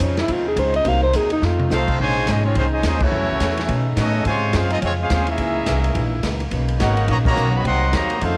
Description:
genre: jazz, big band swing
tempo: 212 BPM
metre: 4/4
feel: swing 60% on 8ths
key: Bb minor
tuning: A4 = 442 Hz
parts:
  - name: breathy alto saxophone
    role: melody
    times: 0.0-1.7 s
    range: Db4 to F5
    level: -22 LUFS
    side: equal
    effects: cassette tape
  - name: archtop guitar, miked and amplified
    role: accompaniment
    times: 0.0-8.4 s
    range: F2 to Eb4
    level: -34 LUFS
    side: equal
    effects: none
  - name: mellow saxophone section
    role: sustained chords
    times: 0.0-8.4 s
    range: C3 to F4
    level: -32 LUFS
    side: equal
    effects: cassette tape
  - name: upright bass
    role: bass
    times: 0.0-8.4 s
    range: Ab1 to B2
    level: -24 LUFS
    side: equal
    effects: none
  - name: swinging big-band drum kit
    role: drums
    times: 0.0-8.3 s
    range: crash cymbal, hi-hat, kick drum, ride cymbal, snare drum, toms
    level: -28 LUFS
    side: equal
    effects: cassette tape
  - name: warm grand piano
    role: accompaniment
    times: 0.6-1.9 s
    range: Ab3 to C5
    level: -30 LUFS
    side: equal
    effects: cassette tape
  - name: brilliant trumpet section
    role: melody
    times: 1.7-8.4 s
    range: Ab3 to C6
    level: -25 LUFS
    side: equal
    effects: cassette tape
  - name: bright trombone section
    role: second line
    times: 1.7-8.4 s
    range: C3 to F#4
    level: -29 LUFS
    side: equal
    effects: cassette tape
room: studio ambience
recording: home recording on cassette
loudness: -19 LUFS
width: mono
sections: 0.0-2.0 A section; 2.0-8.4 B section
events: alto saxophone solo 0.0-2.0; drum fill 1.4; band accent 3.0, 7.2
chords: 0.0 Dbmaj9; 0.9 Cm7b5; 1.4 F7; 2.0 Bbm11; 3.1 Gbm7; 3.7 B9; 4.3 Dbmaj7; 5.4 Gb13; 6.5 Bmaj9; 7.6 Cm7b5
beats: 0.01 0.29 0.57 | 0.86 1.14 1.42 1.71 | 1.99 2.27 2.56 2.84 | 3.12 3.40 3.69 3.97 | 4.25 4.54 4.82 5.10 | 5.38 5.67 5.95 6.23 | 6.52 6.80 7.08 7.37 | 7.65 7.93 8.21

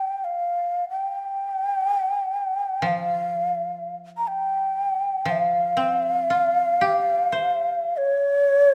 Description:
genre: japanese traditional, Japanese chamber music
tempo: free time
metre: none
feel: none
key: unclear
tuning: A4 = 440 Hz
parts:
  - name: breathy mellow shakuhachi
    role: melody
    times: 0.0-8.7 s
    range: Db5 to Bb5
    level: -24 LUFS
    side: equal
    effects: none
  - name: koto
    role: accompaniment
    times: 2.8-8.7 s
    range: F3 to C5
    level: -31 LUFS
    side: equal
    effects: none
room: moderate scoring stage reverb, RT60 1.7 s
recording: none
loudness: -23 LUFS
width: mono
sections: 0.0-8.7 A section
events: slowing down 5.4-8.7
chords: none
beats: free time

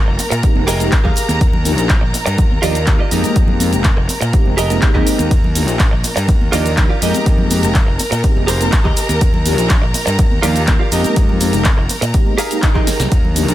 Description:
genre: filtered disco house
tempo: 123 BPM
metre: 4/4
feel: straight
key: unclear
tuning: A4 = 440 Hz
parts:
  - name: bright studio violin section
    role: sustained chords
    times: 0.0-13.5 s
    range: Bb4 to Bb5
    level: -23 LUFS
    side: equal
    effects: vintage 12-bit sampler grit, sidechain pumping
  - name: direct-recorded clean electric guitar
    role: riff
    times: 0.1-13.1 s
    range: F4 to F5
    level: -21 LUFS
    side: right 3 dB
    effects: lush chorus, sidechain pumping
  - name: fuzz fingered electric bass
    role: bass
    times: 0.1-13.5 s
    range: F1 to Bb2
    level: -19 LUFS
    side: equal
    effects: overdrive, sidechain pumping
  - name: punchy analog drum machine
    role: drums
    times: 0.2-13.5 s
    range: handclaps, hi-hat, ride cymbal, rim click, shaker, snare drum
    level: -21 LUFS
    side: equal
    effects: sidechain pumping on perc, sidechain pumping on hats, sidechain pumping on cymbals
  - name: congas and tambourine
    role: percussion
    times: 0.2-13.5 s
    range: none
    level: -27 LUFS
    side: right 1 dB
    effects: none
  - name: mellow synth brass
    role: accompaniment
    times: 0.4-13.5 s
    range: F3 to G5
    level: -21 LUFS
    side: left 1 dB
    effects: chorus, phaser, sidechain pumping
  - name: electronic kick drum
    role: drums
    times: 0.4-13.2 s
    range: none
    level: -14 LUFS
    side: equal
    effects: none
  - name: swell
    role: sound effects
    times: 12.3-13.1 s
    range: none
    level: -26 LUFS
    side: right 3 dB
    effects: none
room: little or no reverb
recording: none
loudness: -12 LUFS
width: side -14 dB against mid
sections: 0.0-13.5 A section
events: swell 12.3-13.1; drum fill 12.9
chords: 0.0 Fm11; 1.4 Ebmaj9; 3.1 Fm11; 5.3 Ebmaj9; 7.0 Fm11; 9.2 Ebmaj9; 10.9 Fm11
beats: 0.43 0.92 | 1.41 1.90 2.38 2.87 | 3.36 3.85 4.33 4.82 | 5.31 5.80 6.29 6.77 | 7.26 7.75 8.24 8.72 | 9.21 9.70 10.19 10.68 | 11.16 11.65 12.14 12.63 | 13.12

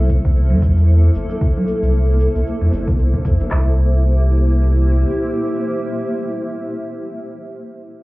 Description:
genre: organic downtempo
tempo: 114 BPM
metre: 4/4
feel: swing 58% on 16ths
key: C mixolydian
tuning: A4 = 440 Hz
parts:
  - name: granular cloud pad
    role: sustained chords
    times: 0.0-7.3 s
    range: Bb3 to E5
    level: -22 LUFS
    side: equal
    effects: built-in reverb, sidechain pumping
  - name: warm sub bass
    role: bass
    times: 0.0-5.1 s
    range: G1 to E2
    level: -14 LUFS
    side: equal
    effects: sidechain pumping
  - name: cabasa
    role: drums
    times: 0.1-3.5 s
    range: none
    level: -58 LUFS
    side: equal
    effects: none
  - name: organic electronic drum kit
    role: drums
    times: 0.1-3.7 s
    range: handclaps, kick drum, snare drum, toms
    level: -19 LUFS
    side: equal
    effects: none
  - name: congas and bongos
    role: percussion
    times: 0.5-3.5 s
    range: none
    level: -25 LUFS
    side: right 1 dB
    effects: none
room: light reverb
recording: heard muffled through a wall, club ambience, EQ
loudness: -14 LUFS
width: side -20 dB against mid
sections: 0.0-3.5 A section; 3.5-7.7 B section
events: none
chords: 0.0 C7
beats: 0.35 0.88 | 1.41 1.93 2.46 2.98 | 3.51 4.04 4.56 5.09 | 5.62 6.14 6.67 7.20

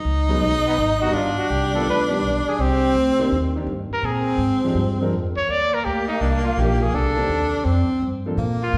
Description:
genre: jazz, small-group swing and bop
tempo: 166 BPM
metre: 4/4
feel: swing 65% on 8ths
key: Bb major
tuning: A4 = 440 Hz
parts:
  - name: clear tenor saxophone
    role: second line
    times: 0.0-8.8 s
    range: Bb3 to D#4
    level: -25 LUFS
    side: equal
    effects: none
  - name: upright bass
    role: bass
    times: 0.0-8.8 s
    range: G1 to Bb2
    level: -26 LUFS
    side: equal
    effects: none
  - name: clear baby grand piano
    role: accompaniment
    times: 0.3-8.4 s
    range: D#3 to Bb4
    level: -30 LUFS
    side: equal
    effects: none
  - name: breathy trumpet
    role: melody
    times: 0.7-8.8 s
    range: B3 to D5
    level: -26 LUFS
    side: equal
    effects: none
room: wet recital hall reverb, RT60 1.4 s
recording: recorded in a church or concert hall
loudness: -21 LUFS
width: mono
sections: 0.0-8.8 A section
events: none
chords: 0.0 B6; 1.1 G(b13); 2.6 Cm7; 4.0 Bb13; 5.5 Ebmaj7; 6.9 Cm9; 7.7 F69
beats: 0.06 0.43 0.79 | 1.15 1.51 1.87 2.24 | 2.60 2.96 3.32 3.68 | 4.05 4.41 4.77 5.13 | 5.49 5.85 6.21 6.58 | 6.94 7.30 7.66 8.02 | 8.38 8.74

